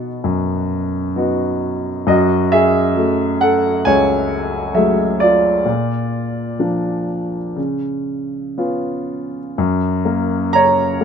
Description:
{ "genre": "classical, lyrical solo piano", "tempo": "58-68 BPM", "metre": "4/4", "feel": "rubato", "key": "unclear", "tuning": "A4 = 440 Hz", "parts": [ { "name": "warm grand piano", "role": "solo", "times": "0.0-11.0 s", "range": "Db2 to A#5", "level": "-15 LUFS", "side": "equal", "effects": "none" } ], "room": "light reverb", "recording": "none", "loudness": "-15 LUFS", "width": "side -7 dB against mid", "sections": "0.0-9.6 A section; 9.6-11.0 B section", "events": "none", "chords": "0.0 B; 2.1 Gbmadd9; 5.7 Bb; 7.6 Db7; 9.6 F#" }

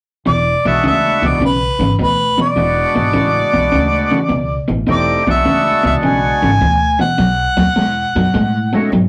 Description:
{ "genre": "electric blues shuffle", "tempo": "104 BPM", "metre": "4/4", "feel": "swing 68% on 8ths", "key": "E mixolydian", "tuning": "A4 = 440 Hz", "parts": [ { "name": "warm harmonica", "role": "melody", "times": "0.3-8.9 s", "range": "B4 to G#5", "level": "-18 LUFS", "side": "equal", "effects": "overdrive" }, { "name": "electric guitar through a small old amp", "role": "riff", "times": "0.3-9.1 s", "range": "E2 to G#3", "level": "-19 LUFS", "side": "equal", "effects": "none" }, { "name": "upright bass", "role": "bass", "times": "0.3-9.1 s", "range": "E1 to A2", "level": "-23 LUFS", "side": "equal", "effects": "none" }, { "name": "overdriven tonewheel organ", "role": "accompaniment", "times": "0.7-8.9 s", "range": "G#3 to G4", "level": "-21 LUFS", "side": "equal", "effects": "slow rotary speaker" } ], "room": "wet small room reverb, RT60 0.5 s", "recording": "rough rehearsal-room recording, warm saturation", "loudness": "-15 LUFS", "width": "mono", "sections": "0.3-9.1 A section", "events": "none", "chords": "0.3 E7; 7.2 B7" }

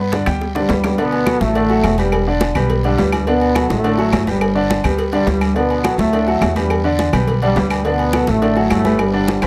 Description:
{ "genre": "latin, salsa", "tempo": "210 BPM", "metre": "4/4", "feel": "straight", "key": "D major", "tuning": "A4 = 439 Hz", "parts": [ { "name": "warm grand piano", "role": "accompaniment", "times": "0.0-9.5 s", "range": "D3 to B5", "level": "-22 LUFS", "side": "equal", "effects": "none" }, { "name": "upright bass", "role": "bass", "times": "0.0-9.5 s", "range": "E1 to G2", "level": "-23 LUFS", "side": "equal", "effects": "none" }, { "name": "bongos and cowbell", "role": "percussion", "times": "0.1-9.5 s", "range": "none", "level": "-30 LUFS", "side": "equal", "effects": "none" }, { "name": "congas", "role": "percussion", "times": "0.1-9.5 s", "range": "none", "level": "-26 LUFS", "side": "equal", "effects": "none" }, { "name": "guiro", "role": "percussion", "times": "0.1-9.5 s", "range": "none", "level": "-37 LUFS", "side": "equal", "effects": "none" }, { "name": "timbales and agogo bells", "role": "percussion", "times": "0.1-9.5 s", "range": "none", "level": "-28 LUFS", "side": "equal", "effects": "none" }, { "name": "claves", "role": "percussion", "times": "0.3-9.5 s", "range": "none", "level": "-32 LUFS", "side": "equal", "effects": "none" }, { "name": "warm trombone section", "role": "melody", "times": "0.6-9.5 s", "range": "G2 to B3", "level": "-20 LUFS", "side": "equal", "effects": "none" } ], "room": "light reverb", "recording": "close, detailed microphones", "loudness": "-16 LUFS", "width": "mono", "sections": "1.0-9.5 A section", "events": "drum fill 0.4-1.0, 9.3", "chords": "0.0 G; 1.0 D; 2.1 Em7; 3.3 D; 4.4 G; 5.6 D; 6.7 Em7; 7.8 D" }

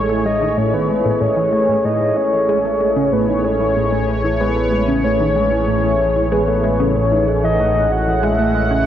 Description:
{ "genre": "ambient, sequencer-driven space music", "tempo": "94 BPM", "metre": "4/4", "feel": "straight", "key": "A lydian", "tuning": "A4 = 443 Hz", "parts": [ { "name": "sweeping resonant pad", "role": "sustained chords", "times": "0.0-8.9 s", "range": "A3 to F#5", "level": "-20 LUFS", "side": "right 1 dB", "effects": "chorus" }, { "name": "tight sequenced synth", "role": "riff", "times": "0.0-8.9 s", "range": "A2 to A3", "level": "-20 LUFS", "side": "equal", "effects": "chorus, phaser, ping-pong delay" }, { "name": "analog drone", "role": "bass", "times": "0.0-8.9 s", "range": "A1", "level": "-23 LUFS", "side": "equal", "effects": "chorus" }, { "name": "soft octave-layered synth lead", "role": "melody", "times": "0.3-8.9 s", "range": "B4 to F#5", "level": "-18 LUFS", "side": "left 1 dB", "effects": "chorus, ping-pong delay" } ], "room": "wet huge ambient reverb, RT60 8.4 s", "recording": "worn, warbling old tape, cassette tape, warbly pitch drift", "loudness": "-14 LUFS", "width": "side -10 dB against mid", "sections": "0.0-8.9 A section", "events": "none", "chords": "0.0 Amaj7" }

